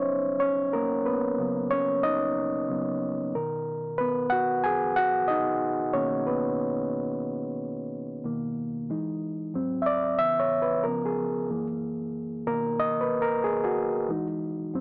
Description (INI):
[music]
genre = R&B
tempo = 92 BPM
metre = 4/4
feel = swing 61% on 16ths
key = B major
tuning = A4 = 440 Hz
[part]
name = overdriven reed electric piano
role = solo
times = 0.0-14.8 s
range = F#2 to G#5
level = -25 LUFS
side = equal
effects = none
[sound]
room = light reverb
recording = small speaker sound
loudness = -25 LUFS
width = side -32 dB against mid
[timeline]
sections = 0.0-8.9 A section; 8.9-14.8 B section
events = reed electric piano solo 0.0-8.9, 8.9-14.8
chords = 0.0 C#13sus4; 3.3 Bmaj9; 8.2 Bmaj7; 8.9 Emaj7; 9.5 G#7#11; 10.2 C#m7; 10.8 C#7; 11.5 F#7; 12.5 Bmaj7; 14.1 Emaj7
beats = 0.40 | 1.05 1.70 2.36 3.01 | 3.66 4.31 4.96 5.62 | 6.27 6.92 7.57 8.23 | 8.88 9.53 10.18 10.84 | 11.49 12.14 12.79 13.44 | 14.10 14.75